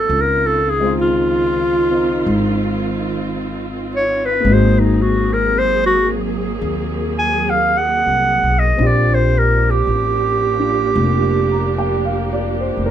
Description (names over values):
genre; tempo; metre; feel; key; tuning
jazz ballad; 55 BPM; 4/4; swing 67% on 8ths; unclear; A4 = 439 Hz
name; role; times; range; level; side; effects
clear clarinet; melody; 0.0-12.4 s; Eb4 to Ab5; -16 LUFS; right 1 dB; none
warm grand piano; accompaniment; 0.0-12.9 s; Ab3 to Bb5; -25 LUFS; left 2 dB; none
muted studio string section; sustained chords; 0.0-12.9 s; Eb3 to Ab4; -23 LUFS; right 2 dB; none
upright bass; bass; 0.0-12.9 s; F1 to Eb2; -19 LUFS; equal; none
room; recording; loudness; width
light reverb; minimal, uncompressed stereo recording, faint mains hum; -14 LUFS; side -10 dB against mid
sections
0.0-12.9 A section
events
clarinet solo 0.0-12.9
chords
0.1 Dbmaj9; 4.4 Ab9; 8.8 Bb6